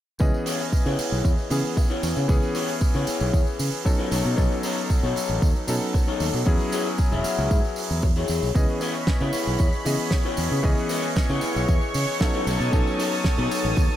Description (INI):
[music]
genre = nu-disco, nu disco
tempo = 115 BPM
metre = 4/4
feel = straight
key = C# minor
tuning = A4 = 440 Hz
[part]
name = warm electric grand piano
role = accompaniment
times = 0.2-14.0 s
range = E3 to D#5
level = -28 LUFS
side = left 1 dB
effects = sidechain pumping, ping-pong delay
[part]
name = growling fingered electric bass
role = bass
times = 0.2-13.9 s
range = E1 to C#3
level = -26 LUFS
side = equal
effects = overdrive, tube saturation
[part]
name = electronic kick drum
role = drums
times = 0.2-13.9 s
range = none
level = -22 LUFS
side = equal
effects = none
[part]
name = tambourine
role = percussion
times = 0.2-14.0 s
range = none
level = -38 LUFS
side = right 2 dB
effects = none
[part]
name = electric guitar at the edge of break-up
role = riff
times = 0.5-13.8 s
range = D#4 to E5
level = -30 LUFS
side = left 4 dB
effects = lush chorus, ping-pong delay
[part]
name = damped 70s drum kit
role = drums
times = 0.5-13.6 s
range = hi-hat, snare drum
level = -32 LUFS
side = right 3 dB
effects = none
[part]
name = lush unison pad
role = sustained chords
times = 8.6-14.0 s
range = C#5 to D#6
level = -30 LUFS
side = right 1 dB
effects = chorus, sidechain pumping
[sound]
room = light reverb, studio ambience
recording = none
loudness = -21 LUFS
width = side -12 dB against mid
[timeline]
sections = 0.2-14.0 A section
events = none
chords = 0.2 C#m7; 4.1 B9; 6.5 E6; 8.6 C#m7; 12.5 B9